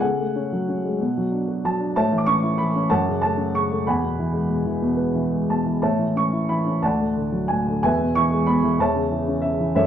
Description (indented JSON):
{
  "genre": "classical, lyrical solo piano",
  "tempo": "59-65 BPM (dotted quarters)",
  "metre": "6/8",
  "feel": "rubato",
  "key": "A major",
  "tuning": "A4 = 440 Hz",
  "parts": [
    { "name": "dark upright piano", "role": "solo", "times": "0.0-9.9 s", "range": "D2 to D6", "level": "-19 LUFS", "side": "equal", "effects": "none" }
  ],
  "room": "moderate recital hall reverb, RT60 1.5 s",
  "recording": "dark, warm production",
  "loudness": "-19 LUFS",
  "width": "side -9 dB against mid",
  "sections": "0.0-9.9 A section",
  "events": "none",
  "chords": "0.0 F#madd9/C#; 1.0 Bm; 2.0 A; 2.9 F#m; 3.9 Eadd9; 5.8 A; 6.8 D; 7.8 E; 8.8 A/E"
}